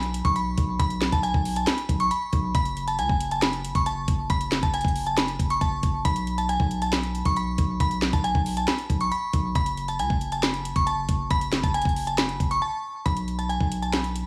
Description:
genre	hip hop, trap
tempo	137 BPM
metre	4/4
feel	half-time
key	F# minor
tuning	A4 = 436 Hz
part	glassy synth bell	melody	0.0-14.2 s	G#5 to C#6	-29 LUFS	equal	chorus, digital delay
part	long sustained 808-style bass	bass	0.0-14.2 s	F#1 to C#2	-31 LUFS	equal	none
part	trap drum kit	drums	0.0-14.3 s	handclaps, hi-hat, kick drum, snare drum	-28 LUFS	equal	none
room	light reverb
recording	studio ambience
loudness	-25 LUFS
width	mono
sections	0.0-13.1 A section; 13.1-14.3 B section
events	break 12.6-13.1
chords	0.0 N.C.; 2.5 F#m; 6.0 N.C.; 9.6 F#m; 13.1 Amaj7sus2/B (rootless)

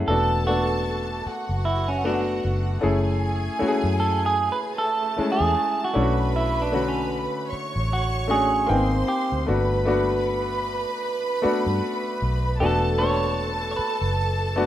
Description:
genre	soul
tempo	77 BPM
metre	4/4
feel	swing 58% on 16ths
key	unclear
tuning	A4 = 441 Hz
part	clear grand piano	accompaniment	0.0-14.7 s	D3 to G#5	-26 LUFS	left 2 dB	plate reverb
part	vintage muted fingered electric bass	bass	0.0-14.7 s	E1 to G2	-26 LUFS	equal	none
part	semi-hollow electric guitar	melody	0.1-14.1 s	C#4 to C#5	-26 LUFS	right 3 dB	spring reverb, plate reverb
part	rich studio string section	second line	0.1-14.7 s	A3 to C#6	-29 LUFS	right 2 dB	plate reverb
room	moderate small room reverb, RT60 0.6 s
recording	rough home demo mix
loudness	-21 LUFS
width	side -12 dB against mid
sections	0.1-14.7 A section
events	clean electric guitar solo 0.1-14.7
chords	0.1 E9sus4; 2.8 F#m9; 6.0 Bm7; 8.7 G#maj7; 9.5 Gmaj7; 12.6 E9sus4

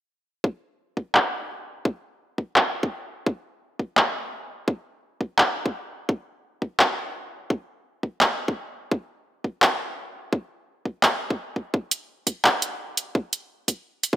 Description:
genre	half-time drum and bass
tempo	170 BPM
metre	4/4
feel	swing 55% on 16ths, half-time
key	none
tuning	none
part	electronic kick drum	drums	0.4-14.2 s	none	-24 LUFS	equal	high-pass filter on kick
part	drum and bass drum kit	drums	1.1-14.1 s	handclaps, hi-hat	-20 LUFS	equal	overdrive, low-pass filter on snare, low-pass filter on hats
room	moderate lush hall reverb, RT60 2.0 s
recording	none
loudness	-23 LUFS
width	side -13 dB against mid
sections	0.4-14.2 A section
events	filter sweep on drum 0.4-14.2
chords	none

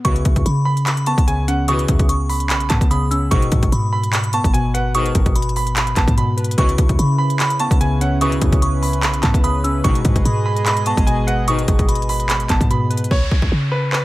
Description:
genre	hip hop, trap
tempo	147 BPM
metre	4/4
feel	half-time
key	C# minor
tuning	A4 = 440 Hz
part	bright grand piano	melody	0.0-14.0 s	B4 to C#6	-24 LUFS	right 3 dB	low-pass filter, tape echo
part	glassy synth bell	second line	0.0-12.7 s	B5 to E6	-28 LUFS	left 1 dB	chorus, tape echo
part	warbly lo-fi synth keys	accompaniment	0.0-13.1 s	B2 to B4	-22 LUFS	left 1 dB	chorus, low-pass filter
part	warm brass ensemble	stabs	0.0-11.9 s	G#2 to E3	-26 LUFS	left 4 dB	none
part	clean 808-style bass	bass	0.0-14.0 s	G#1 to C#3	-20 LUFS	equal	none
part	trap drum kit	drums	0.0-14.0 s	handclaps, hi-hat, kick drum	-18 LUFS	equal	none
part	warm analog pad	sustained chords	6.6-13.1 s	C#3 to D#5	-27 LUFS	right 1 dB	chorus
part	downlifter	sound effects	13.1-14.0 s	none	-27 LUFS	equal	none
room	little or no reverb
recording	none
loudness	-15 LUFS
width	side -17 dB against mid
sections	0.0-13.1 A section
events	hi-hats muted 13.1-14.0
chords	0.0 C#m7; 3.3 G#m; 6.6 C#m7; 9.8 G#m; 13.1 C#7(no3)

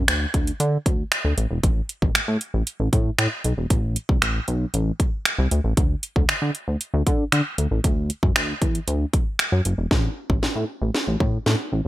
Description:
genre	dance-pop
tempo	116 BPM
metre	4/4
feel	straight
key	unclear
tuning	A4 = 441 Hz
part	chorused synth bass	bass	0.0-11.9 s	E1 to D3	-22 LUFS	equal	sidechain pumping
part	house drum kit	drums	0.1-11.6 s	finger snaps, hi-hat, kick drum, snare drum	-21 LUFS	equal	gated reverb
room	little or no reverb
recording	bright 1980s-style digital production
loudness	-20 LUFS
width	side -15 dB against mid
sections	0.0-9.9 A section; 9.9-11.9 B section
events	build-up 9.9-11.9; drum fill 9.9-11.9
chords	none

